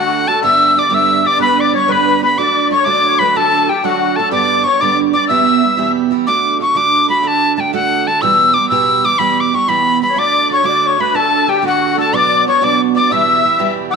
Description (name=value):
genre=celtic folk, Celtic jig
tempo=123 BPM (dotted quarters)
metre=6/8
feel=straight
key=unclear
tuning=A4 = 440 Hz
part: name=bright tin whistle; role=melody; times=0.0-14.0 s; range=F#5 to E6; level=-13 LUFS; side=left 1 dB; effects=none
part: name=musette accordion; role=second line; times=0.0-5.9, 10.1-13.9 s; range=F#4 to F#5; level=-18 LUFS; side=left 12 dB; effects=slapback echo
part: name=picked steel-string acoustic guitar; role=accompaniment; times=0.0-14.0 s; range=E2 to G4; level=-18 LUFS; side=right 13 dB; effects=none
room=moderate echo chamber reverb, RT60 2.2 s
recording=1960s-style stereo with parts hard left and right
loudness=-11 LUFS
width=side -5 dB against mid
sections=0.0-6.3 A section; 6.3-14.0 A section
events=none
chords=0.4 G; 2.4 D; 4.3 G; 5.3 Em; 6.3 D; 8.2 Em; 10.2 D; 12.1 Bm; 13.1 Em